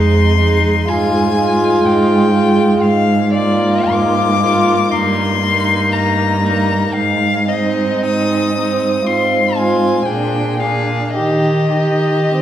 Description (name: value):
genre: classical, slow romantic movement for string quartet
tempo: 51-63 BPM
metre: 4/4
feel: rubato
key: Eb major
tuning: A4 = 440 Hz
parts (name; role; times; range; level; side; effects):
- clear violin; melody; 0.0-12.4 s; D5 to Eb6; -18 LUFS; left 6 dB; none
- rich violin; second line; 0.0-12.4 s; Eb4 to Ab4; -18 LUFS; left 1 dB; none
- warm viola; accompaniment; 0.0-12.4 s; Ab3 to Eb4; -19 LUFS; right 3 dB; none
- rich cello; bass; 0.0-12.4 s; F2 to Eb3; -17 LUFS; right 2 dB; none
room: wet recital hall reverb, RT60 1.8 s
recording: heard from further back in the room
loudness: -12 LUFS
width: side -11 dB against mid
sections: 0.0-12.4 A section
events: none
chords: 0.0 Fm7; 0.9 Fm/Ab; 2.8 Bb7/Ab; 4.9 Eb/G; 6.9 Ab; 10.1 Bb7; 11.2 Eb